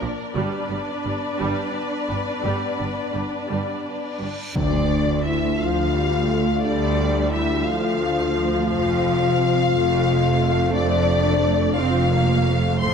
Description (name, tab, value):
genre	cinematic, epic orchestral film score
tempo	58 BPM (dotted quarters)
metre	6/8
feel	straight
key	D minor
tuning	A4 = 440 Hz
part	rich studio violin section	second line	0.0-12.9 s	Bb4 to C6	-28 LUFS	left 2 dB	none
part	warm symphonic viola section	accompaniment	0.0-12.9 s	F3 to D4	-28 LUFS	right 3 dB	none
part	dark French horn section	sustained chords	0.0-12.9 s	Bb3 to C5	-24 LUFS	left 7 dB	none
part	rich symphonic cello section	bass	0.0-12.9 s	D2 to Bb2	-26 LUFS	right 2 dB	none
part	warm symphonic double bass section	bass	0.0-12.9 s	F1 to D2	-26 LUFS	right 3 dB	none
part	reverse cymbal and impact	sound effects	4.1-6.6 s	none	-32 LUFS	equal	none
part	dark studio violin section	melody	4.6-12.9 s	D5 to C6	-31 LUFS	left 5 dB	none
part	warm trombone section	sustained chords	4.6-12.8 s	C3 to C4	-30 LUFS	right 3 dB	none
part	timpani	percussion	4.6-5.6 s	D3	-29 LUFS	equal	none
room	moderate scoring stage reverb, RT60 1.8 s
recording	none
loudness	-19 LUFS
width	side -6 dB against mid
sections	0.0-4.6 A section; 4.6-12.9 B section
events	build-up 0.0-4.6; reverse cymbal 4.1-4.6; impact 4.6-6.6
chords	0.4 G; 4.6 Dm; 8.7 F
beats	| 0.36 1.40 | 2.45 3.51 | 4.56 5.60 | 6.63 7.66 | 8.69 9.71 | 10.74 11.76 | 12.80